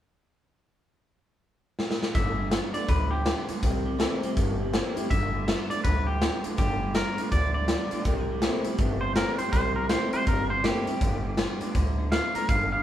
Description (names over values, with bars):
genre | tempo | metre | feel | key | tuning
rockabilly | 163 BPM | 4/4 | swing 62% on 8ths | G mixolydian | A4 = 439 Hz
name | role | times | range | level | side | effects
raw garage drum kit | drums | 1.8-12.6 s | hi-hat, kick drum, snare drum | -27 LUFS | equal | none
twangy electric guitar | melody | 2.1-12.8 s | G4 to F5 | -30 LUFS | equal | spring reverb
picked steel-string acoustic guitar | accompaniment | 2.1-12.8 s | G2 to F4 | -36 LUFS | left 3 dB | none
upright bass | bass | 2.1-12.8 s | G1 to D2 | -29 LUFS | equal | none
electric guitar through a small old amp | riff | 2.2-12.8 s | G2 to A3 | -33 LUFS | right 1 dB | spring reverb
room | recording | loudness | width
moderate studio reverb, RT60 0.7 s | band playing live in one room | -24 LUFS | side -11 dB against mid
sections
0.7-2.2 A section; 2.2-12.8 B section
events
drum fill 1.8-2.2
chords
0.7 N.C.; 2.2 G7; 3.6 C7; 5.1 G7; 8.1 C7; 11.0 G7